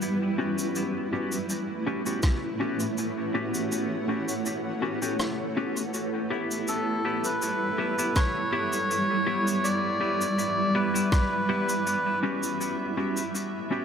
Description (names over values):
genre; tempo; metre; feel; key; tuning
ambient dub; 81 BPM; 4/4; straight; unclear; A4 = 440 Hz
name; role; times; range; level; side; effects
granular cloud pad; sustained chords; 0.0-13.8 s; G3 to F#5; -29 LUFS; right 1 dB; built-in reverb
cabasa and rim click; drums; 0.0-13.5 s; none; -35 LUFS; equal; dub echo
semi-hollow electric guitar; stabs; 0.4-13.8 s; B3 to G4; -31 LUFS; left 2 dB; wide subtle chorus, dub echo
electronic kick drum; drums; 2.2-2.4, 8.2-11.3 s; none; -23 LUFS; equal; none
melodica; melody; 6.7-12.2 s; A4 to D5; -28 LUFS; equal; dub echo
room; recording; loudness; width
moderate huge ambient reverb, RT60 7.8 s; none; -25 LUFS; side -7 dB against mid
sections
0.0-6.7 A section; 6.7-13.8 B section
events
kick drops out 3.7-6.7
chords
0.0 G6; 0.8 A13; 6.7 G6; 12.6 A13